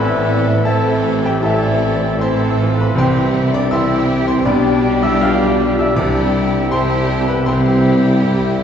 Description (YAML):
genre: classical, romantic movement for piano and orchestra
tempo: 79 BPM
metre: 4/4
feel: rubato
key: unclear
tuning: A4 = 436 Hz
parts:
  - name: clear baby grand piano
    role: melody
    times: 0.0-8.6 s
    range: A1 to F6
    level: -18 LUFS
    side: equal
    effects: none
  - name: dark chamber violin section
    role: melody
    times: 0.0-8.6 s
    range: G4 to A4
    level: -29 LUFS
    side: left 3 dB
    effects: none
  - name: mellow hollow flute section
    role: second line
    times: 0.0-8.6 s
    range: C5 to A5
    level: -27 LUFS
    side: left 3 dB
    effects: none
  - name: warm clarinet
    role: second line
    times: 0.0-8.2 s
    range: G4 to F5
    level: -27 LUFS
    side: left 1 dB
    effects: none
  - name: warm cor anglais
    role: second line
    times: 0.0-8.6 s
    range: D5 to E5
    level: -27 LUFS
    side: left 1 dB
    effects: none
  - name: warm symphonic violin section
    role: second line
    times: 0.0-8.6 s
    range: C4 to E4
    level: -26 LUFS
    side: left 4 dB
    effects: none
  - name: clear bassoon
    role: accompaniment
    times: 0.0-8.6 s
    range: E3 to G3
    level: -28 LUFS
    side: left 2 dB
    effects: none
  - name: warm studio viola section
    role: accompaniment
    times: 0.0-8.6 s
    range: E3 to G3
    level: -24 LUFS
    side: left 1 dB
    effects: none
  - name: dark trombone section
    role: sustained chords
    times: 0.0-8.6 s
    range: E3 to E4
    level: -25 LUFS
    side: equal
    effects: none
  - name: mellow French horn section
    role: sustained chords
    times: 0.0-8.2 s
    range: G3 to F4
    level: -24 LUFS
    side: left 2 dB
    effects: none
  - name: mellow trumpet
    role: stabs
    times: 0.0-8.6 s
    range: E4 to G4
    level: -28 LUFS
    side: right 2 dB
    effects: none
  - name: dark chamber double bass section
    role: bass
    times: 0.0-8.6 s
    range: A1 to C2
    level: -24 LUFS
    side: right 3 dB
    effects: none
  - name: warm chamber cello section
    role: bass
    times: 0.0-8.6 s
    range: A2 to C3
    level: -25 LUFS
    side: right 2 dB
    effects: none
  - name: warm tuba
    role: bass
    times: 0.0-8.6 s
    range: A1 to C2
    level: -24 LUFS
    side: right 2 dB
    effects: none
  - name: timpani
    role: percussion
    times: 3.0-7.0 s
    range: C3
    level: -26 LUFS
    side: equal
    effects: none
room: wet recital hall reverb, RT60 1.6 s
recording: heard from further back in the room, nothing above 8.0 kHz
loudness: -13 LUFS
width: side -8 dB against mid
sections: 0.0-8.6 A section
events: none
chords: 0.0 Am; 3.0 C; 4.4 G/B; 6.0 C